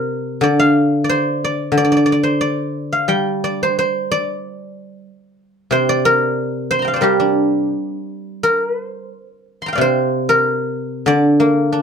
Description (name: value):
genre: chinese traditional, Chinese solo plucked strings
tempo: 85-95 BPM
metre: 2/4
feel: rubato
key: unclear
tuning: A4 = 438 Hz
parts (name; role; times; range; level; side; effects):
- guzheng; solo; 0.0-11.8 s; C3 to C6; -15 LUFS; equal; none
room: light reverb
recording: band playing live in one room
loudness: -15 LUFS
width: side -6 dB against mid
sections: 0.0-8.4 A section; 8.4-11.8 B section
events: none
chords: none